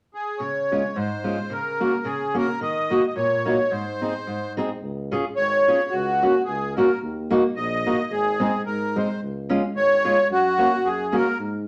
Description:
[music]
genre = alpine folk, alpine dance band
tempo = 109 BPM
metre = 2/4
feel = swing 54% on 8ths, rubato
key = Db major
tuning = A4 = 441 Hz
[part]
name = accordion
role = melody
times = 0.1-11.4 s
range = Gb4 to Eb5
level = -25 LUFS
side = equal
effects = light tremolo tuning
[part]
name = fingerpicked steel-string acoustic guitar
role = accompaniment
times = 0.4-11.3 s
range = Ab2 to Ab4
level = -26 LUFS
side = equal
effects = none
[part]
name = warm tuba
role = bass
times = 4.8-11.7 s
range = Ab1 to Ab2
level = -34 LUFS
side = equal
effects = none
[sound]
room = wet studio reverb, RT60 0.7 s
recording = none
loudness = -23 LUFS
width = mono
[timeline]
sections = 0.4-4.8 A section; 4.8-11.7 B section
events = none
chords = 0.4 Db; 1.5 Gb/Db; 2.6 Ebm; 3.7 Ab; 4.8 Db; 5.9 Gb/Db; 7.0 Ebm; 8.1 Ab; 9.2 Db; 10.3 Gb

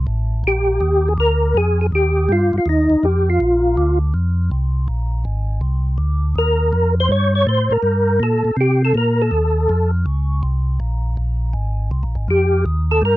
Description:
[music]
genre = soul jazz organ trio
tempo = 162 BPM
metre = 4/4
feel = swing 66% on 8ths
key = Bb major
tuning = A4 = 440 Hz
[part]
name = tonewheel organ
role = bass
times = 0.0-13.2 s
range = Ab1 to C3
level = -17 LUFS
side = equal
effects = slow rotary speaker
[part]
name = percussive tonewheel organ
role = melody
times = 0.5-4.0, 6.4-9.9, 12.3-13.2 s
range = Eb4 to Db5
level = -16 LUFS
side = equal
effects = slow rotary speaker, chorus vibrato
[sound]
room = little or no reverb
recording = dry, close 1970s-style studio recording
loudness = -15 LUFS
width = side -16 dB against mid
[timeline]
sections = 0.4-13.2 A section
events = none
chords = 0.4 Bb; 1.9 Ebadd9; 3.4 Bb9; 6.4 Eb9; 10.8 Bbsus2; 12.3 F9

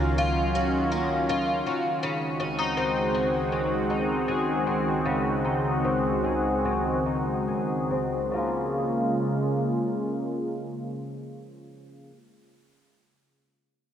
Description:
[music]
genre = dream pop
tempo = 69-81 BPM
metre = 4/4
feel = straight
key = Db major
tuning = A4 = 438 Hz
[part]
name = lush unison pad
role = sustained chords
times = 0.0-12.1 s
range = Db2 to Gb4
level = -26 LUFS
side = equal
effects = chorus, low-pass filter
[part]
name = picked twelve-string acoustic guitar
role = arpeggios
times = 0.0-12.2 s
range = Db3 to Ab4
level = -28 LUFS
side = left 2 dB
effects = analog chorus, low-pass filter, digital delay
[part]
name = vintage muted fingered electric bass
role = bass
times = 0.0-1.6 s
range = Db2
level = -30 LUFS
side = equal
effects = none
[sound]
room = moderate lush hall reverb, RT60 2.7 s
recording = none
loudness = -24 LUFS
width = side -9 dB against mid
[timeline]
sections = 0.0-8.3 A section; 8.3-11.8 B section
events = filter sweep 0.0-8.3; slowing down 2.0-8.3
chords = 0.0 Ebm9/Db; 2.0 Ab7/Db; 8.3 Db6

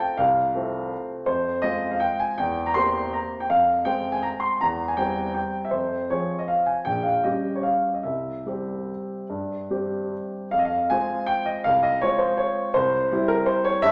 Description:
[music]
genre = classical, piano waltz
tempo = 140-174 BPM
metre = 3/4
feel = rubato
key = F minor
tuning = A4 = 440 Hz
[part]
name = warm upright piano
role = solo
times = 0.0-13.9 s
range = Bb1 to C6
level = -24 LUFS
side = equal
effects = none
[sound]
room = wet recital hall reverb, RT60 1.5 s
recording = none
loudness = -24 LUFS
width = mono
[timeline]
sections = 0.0-10.5 A section; 10.5-13.9 B section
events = none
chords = 0.0 F; 1.3 Fm; 2.4 C7/E; 3.5 Fm; 4.6 C/E; 5.7 Fm; 6.9 Gdim/Bb; 8.0 C; 10.5 Fm; 12.7 C

